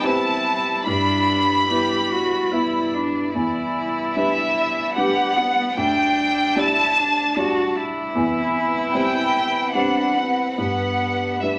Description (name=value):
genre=neoclassical piano and strings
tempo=74 BPM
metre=3/4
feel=uneven beats, rubato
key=unclear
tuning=A4 = 440 Hz
part: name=warm chamber violin section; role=melody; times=0.0-11.6 s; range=E5 to B5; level=-23 LUFS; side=equal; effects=none
part: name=dark cello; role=second line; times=0.0-11.6 s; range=G3 to G4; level=-27 LUFS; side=equal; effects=none
part: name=warm upright piano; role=accompaniment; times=0.0-11.6 s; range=D2 to D5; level=-27 LUFS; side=equal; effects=none
part: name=warm chamber string section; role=sustained chords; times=0.0-11.6 s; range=G3 to D5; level=-31 LUFS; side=equal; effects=none
room=wet small room reverb, RT60 0.5 s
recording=none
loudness=-21 LUFS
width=mono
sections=0.0-11.6 A section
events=none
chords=0.0 Cmaj7/E; 0.9 G6; 3.3 Em7; 5.8 Dsus4; 8.1 Cmaj7/E; 10.6 G